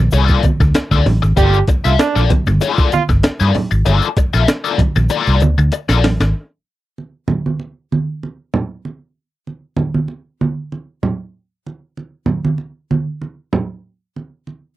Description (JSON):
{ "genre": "funk", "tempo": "96 BPM", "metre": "4/4", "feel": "straight", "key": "G dorian", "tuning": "A4 = 439 Hz", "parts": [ { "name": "biting overdriven guitar", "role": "accompaniment", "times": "0.0-6.2 s", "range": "Bb3 to E5", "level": "-18 LUFS", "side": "left 8 dB", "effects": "wah" }, { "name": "vintage muted fingered electric bass", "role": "bass", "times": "0.0-6.3 s", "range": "G1 to G2", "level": "-14 LUFS", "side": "equal", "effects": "none" }, { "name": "breakbeat sampler-style drum kit", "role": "drums", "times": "0.1-6.3 s", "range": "hi-hat, kick drum, snare drum", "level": "-16 LUFS", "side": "equal", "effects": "none" }, { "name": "egg shaker", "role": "percussion", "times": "0.1-6.3 s", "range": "none", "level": "-39 LUFS", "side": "left 3 dB", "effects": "none" }, { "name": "congas", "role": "percussion", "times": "0.5-14.6 s", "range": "none", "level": "-19 LUFS", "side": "right 3 dB", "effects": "none" }, { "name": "brilliant trombone", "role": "second line", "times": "1.4-3.0 s", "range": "D4 to G4", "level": "-17 LUFS", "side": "right 7 dB", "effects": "none" } ], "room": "little or no reverb", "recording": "dry, close 1970s-style studio recording", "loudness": "-14 LUFS", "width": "side -15 dB against mid", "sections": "0.0-6.3 A section; 6.3-14.8 B section", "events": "drum fill 5.1-6.3", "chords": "0.0 Gm9 (rootless); 6.3 N.C.", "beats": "0.13 0.75 | 1.37 1.99 2.62 3.24 | 3.86 4.48 5.10 5.73 | 6.35 6.97 7.60 8.22 | 8.84 9.47 10.09 10.72 | 11.34 11.97 12.59 13.21 | 13.84 14.46" }